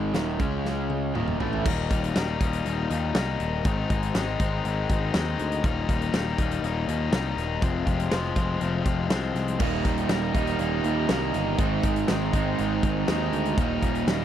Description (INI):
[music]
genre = classic rock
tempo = 121 BPM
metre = 4/4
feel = straight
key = Eb major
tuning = A4 = 439 Hz
[part]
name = overdriven semi-hollow guitar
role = riff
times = 0.0-14.2 s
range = Eb2 to F4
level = -28 LUFS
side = left 6 dB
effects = none
[part]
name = raw garage guitar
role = riff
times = 0.0-1.6, 9.6-14.2 s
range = Eb2 to Eb4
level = -28 LUFS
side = right 16 dB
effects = overdrive
[part]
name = modern bright picked electric bass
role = bass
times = 0.0-14.2 s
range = Eb1 to Eb2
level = -29 LUFS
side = equal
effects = none
[part]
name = huge arena drum kit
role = drums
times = 0.1-14.2 s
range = crash cymbal, hi-hat, kick drum, snare drum, toms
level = -28 LUFS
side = equal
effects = none
[sound]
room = little or no reverb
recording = dry, close 1970s-style studio recording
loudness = -23 LUFS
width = side -10 dB against mid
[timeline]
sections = 0.0-1.7 A section; 1.7-14.2 B section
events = drum fill 0.7-1.7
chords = 0.1 Eb5; 0.4 Db5; 1.2 Eb5; 1.7 Eb; 3.7 Ab; 5.6 Eb; 7.6 Fm; 9.6 Eb; 11.6 Ab; 13.6 Eb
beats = 0.15 0.65 1.16 | 1.66 2.16 2.66 3.16 | 3.65 4.15 4.65 5.15 | 5.64 6.14 6.63 7.13 | 7.62 8.12 8.62 9.11 | 9.61 10.10 10.60 11.09 | 11.59 12.09 12.58 13.08 | 13.57 14.07